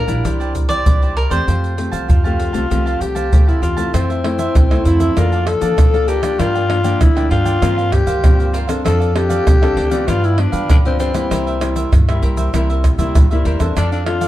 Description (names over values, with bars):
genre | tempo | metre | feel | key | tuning
samba and choro | 98 BPM | 4/4 | straight | F major | A4 = 441 Hz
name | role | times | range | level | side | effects
cavaquinho | melody | 0.0-3.6 s | Bb4 to D5 | -22 LUFS | equal | none
cavaquinho | accompaniment | 0.0-14.3 s | D4 to A5 | -26 LUFS | right 4 dB | none
nylon-string guitar | accompaniment | 0.0-14.3 s | G2 to A4 | -23 LUFS | left 2 dB | none
upright bass | bass | 0.0-14.3 s | Bb1 to G3 | -19 LUFS | equal | none
egg shaker, pandeiro, surdo and tamborim | percussion | 0.1-14.3 s | none | -16 LUFS | equal | none
growling tenor saxophone | second line | 2.1-14.3 s | C4 to A4 | -19 LUFS | left 3 dB | none
room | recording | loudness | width
light reverb | dark, warm production | -13 LUFS | side -14 dB against mid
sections
0.0-3.9 A section; 3.9-14.3 B section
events
tenor saxophone solo 3.9-14.3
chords
0.2 Cadd9; 1.5 Fadd9; 3.9 Fmaj7; 5.2 Bbmaj7/F; 6.4 Gm7; 7.6 C7sus4/G; 8.9 F6; 10.1 G7; 11.3 C7; 13.8 F6